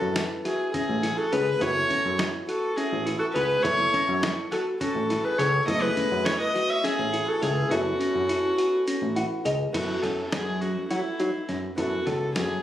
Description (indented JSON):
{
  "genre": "progressive instrumental, band music in an uneven meter",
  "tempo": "207 BPM (eighths)",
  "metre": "7/8",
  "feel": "straight",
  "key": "F# minor",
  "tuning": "A4 = 441 Hz",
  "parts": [
    { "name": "rich viola", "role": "melody", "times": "0.0-12.6 s", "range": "E4 to E5", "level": "-26 LUFS", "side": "equal", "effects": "plate reverb" },
    { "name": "mellow alto saxophone", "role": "second line", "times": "0.0-9.2 s", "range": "C#4 to C#5", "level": "-35 LUFS", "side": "right 1 dB", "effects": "plate reverb" },
    { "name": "dark baby grand piano", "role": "accompaniment", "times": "0.0-12.6 s", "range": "A3 to F#5", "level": "-35 LUFS", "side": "equal", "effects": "plate reverb" },
    { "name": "bell-like tine electric piano", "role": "arpeggios", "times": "0.0-12.6 s", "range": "C#4 to G#4", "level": "-30 LUFS", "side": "left 2 dB", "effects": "plate reverb" },
    { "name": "fat analog bass", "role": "bass", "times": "0.0-12.6 s", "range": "F#1 to F#3", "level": "-29 LUFS", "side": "equal", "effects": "none" },
    { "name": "dusty soul sampler-style drum kit", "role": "drums", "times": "0.2-12.5 s", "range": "crash cymbal, hi-hat, kick drum, snare drum", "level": "-33 LUFS", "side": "equal", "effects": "none" }
  ],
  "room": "moderate studio reverb, RT60 0.6 s",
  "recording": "recorded on a phone in the room, studio reverb",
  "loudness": "-23 LUFS",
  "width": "side -12 dB against mid",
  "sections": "0.0-9.7 A section; 9.7-12.6 B section",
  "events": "kick and snare drop out 7.7-9.7; grand piano fill 8.9-9.7",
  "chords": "0.0 F#m7"
}